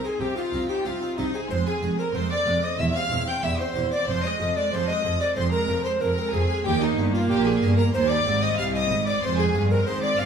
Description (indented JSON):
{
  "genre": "classical, baroque-style concerto movement with solo episodes",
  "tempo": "93 BPM",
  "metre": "4/4",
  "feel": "straight",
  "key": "unclear",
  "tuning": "A4 = 440 Hz",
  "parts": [
    { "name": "mellow hollow tenor recorder", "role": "melody", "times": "0.0-10.3 s", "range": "Eb4 to G5", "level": "-27 LUFS", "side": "equal", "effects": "none" },
    { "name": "warm chamber violin section", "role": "melody", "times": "0.0-10.3 s", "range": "Eb5 to G6", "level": "-32 LUFS", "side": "left 3 dB", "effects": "none" },
    { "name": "rich chamber violin section", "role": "second line", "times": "0.0-10.3 s", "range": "Eb4 to G5", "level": "-30 LUFS", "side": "equal", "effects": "none" },
    { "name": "harpsichord", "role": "accompaniment", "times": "0.0-10.3 s", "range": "Eb2 to C5", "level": "-35 LUFS", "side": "left 1 dB", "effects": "none" },
    { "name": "rich chamber viola section", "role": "accompaniment", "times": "0.0-10.3 s", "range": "F3 to E4", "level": "-31 LUFS", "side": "right 2 dB", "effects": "none" },
    { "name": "rich chamber cello section", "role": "bass", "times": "0.2-10.3 s", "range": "Eb2 to C3", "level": "-29 LUFS", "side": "right 2 dB", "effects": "none" },
    { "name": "rich chamber double bass section", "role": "bass", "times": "0.2-10.3 s", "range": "E1 to Eb2", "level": "-29 LUFS", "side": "right 2 dB", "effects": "none" }
  ],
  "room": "moderate recital hall reverb, RT60 1.5 s",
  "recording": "small room ambience",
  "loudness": "-21 LUFS",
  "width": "side -7 dB against mid",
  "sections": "0.0-10.3 A section",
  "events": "none",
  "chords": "0.0 Cm; 1.5 Fm; 2.8 C/E; 4.1 Fm; 6.7 Eb; 7.9 Cm; 9.2 Fm",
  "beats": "0.20 0.85 | 1.50 2.15 2.79 3.44 | 4.08 4.72 5.37 6.01 | 6.66 7.30 7.94 8.58 | 9.23 9.87"
}